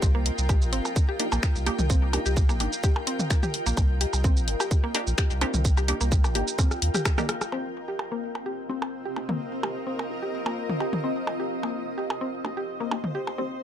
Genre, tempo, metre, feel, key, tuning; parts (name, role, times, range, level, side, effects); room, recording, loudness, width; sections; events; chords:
minimal techno; 128 BPM; 4/4; swing 53% on 16ths; C minor; A4 = 441 Hz
saturated sub bass; bass; 0.0-6.9 s; G1 to Eb2; -26 LUFS; equal; sidechain pumping
electronic kick drum; drums; 0.0-7.2 s; -23 LUFS; equal
garage drum kit; drums; 0.0-7.5 s; finger snaps, hi-hat, rim click, shaker; -30 LUFS; equal; low-pass filter on snare, low-pass filter on hats, low-pass filter on perc
electronic percussion blips and toms; percussion; 0.0-13.4 s; -31 LUFS; equal; overdrive, ping-pong delay
granular cloud pad; texture; 0.0-13.6 s; C4 to G5; -32 LUFS; equal; built-in reverb, sidechain pumping
mallet-like synth pluck; riff; 0.1-13.4 s; Bb3 to G4; -33 LUFS; left 1 dB; chorus, sidechain pumping, tape echo
filtered dub chord stab; stabs; 1.2-13.5 s; Bb3 to G4; -33 LUFS; right 1 dB; phaser, ping-pong delay
light reverb; -24 LUFS; side -10 dB against mid
0.0-7.5 A section; 7.5-13.6 B section
drum fill 6.6-7.5
0.0 Cm7